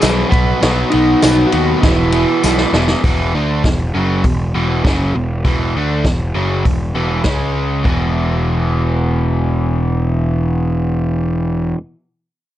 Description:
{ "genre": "garage rock duo or trio", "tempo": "100 BPM", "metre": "4/4", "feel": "straight", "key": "unclear", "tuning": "A4 = 442 Hz", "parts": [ { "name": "electric slide guitar", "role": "melody", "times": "0.0-2.7 s", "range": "D#4 to B4", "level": "-16 LUFS", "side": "right 1 dB", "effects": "none" }, { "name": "overdriven electric guitar", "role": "riff", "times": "0.0-11.8 s", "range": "E2 to D4", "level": "-17 LUFS", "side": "equal", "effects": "none" }, { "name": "fuzz picked electric bass", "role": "bass", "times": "0.0-11.7 s", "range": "E1 to D#2", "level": "-18 LUFS", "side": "equal", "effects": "overdrive" }, { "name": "vintage drum kit", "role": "drums", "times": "0.0-8.0 s", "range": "hi-hat, kick drum, ride cymbal, snare drum", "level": "-17 LUFS", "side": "equal", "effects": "none" }, { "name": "tambourine", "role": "percussion", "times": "0.0-2.6 s", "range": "none", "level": "-25 LUFS", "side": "left 3 dB", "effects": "none" } ], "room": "moderate studio reverb, RT60 0.6 s", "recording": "cassette tape, nothing above 10.5 kHz", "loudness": "-13 LUFS", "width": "side -13 dB against mid", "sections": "0.0-3.0 A section; 3.0-7.9 B section; 7.9-10.3 C section", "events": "drum fill 2.4-3.0", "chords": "0.3 B; 1.8 E5; 7.2 C#5; 7.9 E5" }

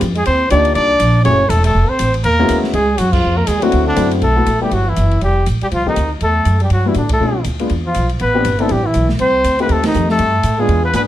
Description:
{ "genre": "jazz, small-group swing and bop", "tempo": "241 BPM", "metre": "4/4", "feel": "swing 59% on 8ths", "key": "G major from 4.2 s", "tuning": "A4 = 438 Hz", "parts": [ { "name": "upright bass", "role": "bass", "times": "0.0-11.1 s", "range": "Fb1 to B2", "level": "-16 LUFS", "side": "right 1 dB", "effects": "none" }, { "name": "open jazz drum kit", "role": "drums", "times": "0.0-11.0 s", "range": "crash cymbal, hi-hat, kick drum, ride cymbal, snare drum", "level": "-26 LUFS", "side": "equal", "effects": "none" }, { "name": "mellow trombone", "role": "second line", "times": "0.1-11.0 s", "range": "D3 to D4", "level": "-22 LUFS", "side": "right 3 dB", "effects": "none" }, { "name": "mellow trumpet", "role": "melody", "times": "0.2-11.0 s", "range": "D4 to D5", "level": "-17 LUFS", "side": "left 1 dB", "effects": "none" }, { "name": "warm baby grand piano", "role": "accompaniment", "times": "0.5-11.1 s", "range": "G3 to Ab4", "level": "-19 LUFS", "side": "left 3 dB", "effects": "none" } ], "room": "light reverb", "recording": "none", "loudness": "-12 LUFS", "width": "side -13 dB against mid", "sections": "0.0-4.2 A section; 4.2-11.1 B section", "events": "band accent 3.1, 7.1, 9.8", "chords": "0.3 Cm11; 1.3 Gbm7; 1.7 F; 2.2 E69; 3.2 F5; 3.7 D7; 4.2 Gmaj13; 5.2 F9; 6.2 Em9; 7.2 Bm7b5; 7.7 E5; 8.2 Am11; 9.2 F9; 10.2 Gadd9" }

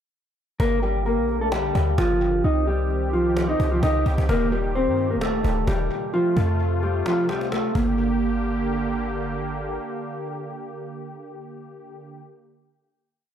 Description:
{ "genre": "hip hop, trap", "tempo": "130 BPM", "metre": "4/4", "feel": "half-time", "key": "G minor", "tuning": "A4 = 440 Hz", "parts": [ { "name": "mellow electric guitar", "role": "melody", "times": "0.6-9.3 s", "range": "F3 to Eb5", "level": "-23 LUFS", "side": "equal", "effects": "low-pass filter, tape echo" }, { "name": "warm analog pad", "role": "sustained chords", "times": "0.6-12.2 s", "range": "Bb2 to G4", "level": "-31 LUFS", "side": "equal", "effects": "chorus" }, { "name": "clean 808-style bass", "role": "bass", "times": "0.6-9.8 s", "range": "D1 to G2", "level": "-24 LUFS", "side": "equal", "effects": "none" }, { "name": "cajon", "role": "drums", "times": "0.6-7.9 s", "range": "none", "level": "-32 LUFS", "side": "equal", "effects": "tape echo" } ], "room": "digital ambience", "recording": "echo-heavy mix", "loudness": "-20 LUFS", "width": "side -9 dB against mid", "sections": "0.6-8.0 hook; 8.0-11.7 final hit", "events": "kick muted 7.1-8.0", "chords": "0.6 Gm; 2.4 Cm; 4.3 Eb; 6.1 F; 7.8 Gm" }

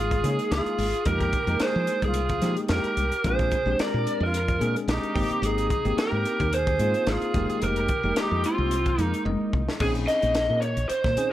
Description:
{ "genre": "electric jazz fusion", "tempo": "110 BPM", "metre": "4/4", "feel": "swing 54% on 16ths", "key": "F minor", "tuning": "A4 = 440 Hz", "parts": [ { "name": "lead guitar through a small cranked amp", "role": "melody", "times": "0.0-11.3 s", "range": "F4 to Eb5", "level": "-26 LUFS", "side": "right 1 dB", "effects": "overdrive" }, { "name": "breathy bright jazz flute", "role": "second line", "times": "0.0-9.2 s", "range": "C4 to Bb4", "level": "-33 LUFS", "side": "right 2 dB", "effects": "none" }, { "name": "woody fretless electric bass", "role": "bass", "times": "0.0-11.2 s", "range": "F1 to F3", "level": "-27 LUFS", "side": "equal", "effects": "wide subtle chorus" }, { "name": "crisp fusion drum kit", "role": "drums", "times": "0.1-11.3 s", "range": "crash cymbal, hi-hat, kick drum, snare drum, toms", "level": "-30 LUFS", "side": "equal", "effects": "none" }, { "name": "bell-like tine electric piano", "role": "accompaniment", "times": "0.2-11.3 s", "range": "Ab3 to Eb5", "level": "-31 LUFS", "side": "left 1 dB", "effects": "medium stereo tremolo" } ], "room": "light reverb, small room ambience", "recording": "none", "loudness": "-22 LUFS", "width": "side -13 dB against mid", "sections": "0.0-9.8 A section; 9.8-11.3 B section", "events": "tine electric piano fill 9.0-9.8; drum fill 9.3-9.8", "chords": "0.0 Db6; 1.1 Fm11; 3.2 Bb9; 5.2 Abmaj9; 7.3 Fm11; 9.8 Bbm11" }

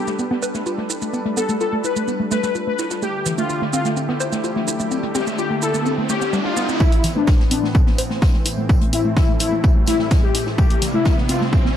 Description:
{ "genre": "melodic techno", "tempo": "127 BPM", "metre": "4/4", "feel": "straight", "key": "A minor", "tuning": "A4 = 441 Hz", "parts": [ { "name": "analog synth brass", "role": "melody", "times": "0.0-11.4 s", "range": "D4 to B4", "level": "-23 LUFS", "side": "left 4 dB", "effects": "chorus, vintage 12-bit sampler grit, sidechain pumping, digital delay" }, { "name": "lush unison pad", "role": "sustained chords", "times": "0.0-11.8 s", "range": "A2 to B4", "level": "-26 LUFS", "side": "equal", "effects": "chorus, vintage 12-bit sampler grit, sidechain pumping" }, { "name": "warbly dusty pluck", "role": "arpeggios", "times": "0.0-11.7 s", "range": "E3 to C5", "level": "-24 LUFS", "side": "equal", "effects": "chorus, cassette tape, sidechain pumping, dub echo" }, { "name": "electronic shaker and hi-hat", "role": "drums", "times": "0.1-11.4 s", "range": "none", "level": "-26 LUFS", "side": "right 2 dB", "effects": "overdrive, sidechain pumping on perc, sidechain pumping on hats" }, { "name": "open jazz drum kit", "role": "drums", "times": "0.1-11.8 s", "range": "hi-hat, snare drum, tambourine", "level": "-36 LUFS", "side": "equal", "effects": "high-pass filter on hats, low-pass filter on hats, high-pass filter on snare, low-pass filter on snare, high-pass filter on perc, low-pass filter on perc, high-pass filter on room, low-pass filter on room" }, { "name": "riser", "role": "sound effects", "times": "4.3-11.8 s", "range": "none", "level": "-29 LUFS", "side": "right 1 dB", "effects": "none" }, { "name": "electronic kick drum", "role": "drums", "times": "6.8-11.6 s", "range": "none", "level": "-16 LUFS", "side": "equal", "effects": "none" } ], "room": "light reverb, small room ambience", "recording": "dark, warm production", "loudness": "-17 LUFS", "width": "side -10 dB against mid", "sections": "0.0-6.8 A section; 6.8-11.8 B section", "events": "filter sweep on analog polysynth 0.0-6.8, 6.8-11.8; riser 4.3-6.8, 6.8-11.8; build-up 6.8-11.8", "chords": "0.0 Gadd9; 3.0 Dsus4; 6.8 Amadd9; 10.6 Cadd9" }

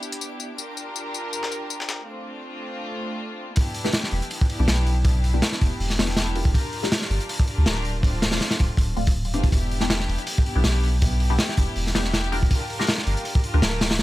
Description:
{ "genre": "drum and bass, jungle", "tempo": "161 BPM", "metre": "4/4", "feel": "swing 53% on 16ths", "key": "E phrygian", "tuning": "A4 = 440 Hz", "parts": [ { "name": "warm studio string section", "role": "sustained chords", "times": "0.0-14.0 s", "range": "A3 to Bb4", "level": "-31 LUFS", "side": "equal", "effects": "vintage 12-bit sampler grit" }, { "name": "breakbeat sampler-style drum kit", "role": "drums", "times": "0.0-2.0 s", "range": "hi-hat, snare drum, tambourine", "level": "-29 LUFS", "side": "left 4 dB", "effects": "high-pass filter on perc, high-pass filter on hats, high-pass filter on snare" }, { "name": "twinkling granular texture", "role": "texture", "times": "0.0-2.1 s", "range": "D5 to D6", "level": "-45 LUFS", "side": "right 2 dB", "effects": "none" }, { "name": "crunchy breakbeat drum kit", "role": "drums", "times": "3.6-14.0 s", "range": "hi-hat, kick drum, snare drum", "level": "-22 LUFS", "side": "equal", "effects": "none" }, { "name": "filtered dub chord stab", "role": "stabs", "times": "3.8-13.6 s", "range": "A3 to A#4", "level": "-32 LUFS", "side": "left 2 dB", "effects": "phaser, analog chorus, dub echo" }, { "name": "soft dub sub bass", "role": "bass", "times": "4.1-14.0 s", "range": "D1 to D2", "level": "-23 LUFS", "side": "equal", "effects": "none" } ], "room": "small room ambience", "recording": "none", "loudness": "-21 LUFS", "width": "side -16 dB against mid", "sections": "0.0-3.6 A section; 3.6-14.0 B section", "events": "break 2.1-3.6; drop 3.6-14.0", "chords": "0.0 Em7; 0.6 Gm7; 2.1 Dm7; 3.6 Em7; 6.5 Gm7; 8.0 Dm7; 9.5 Em7; 12.5 Gm7" }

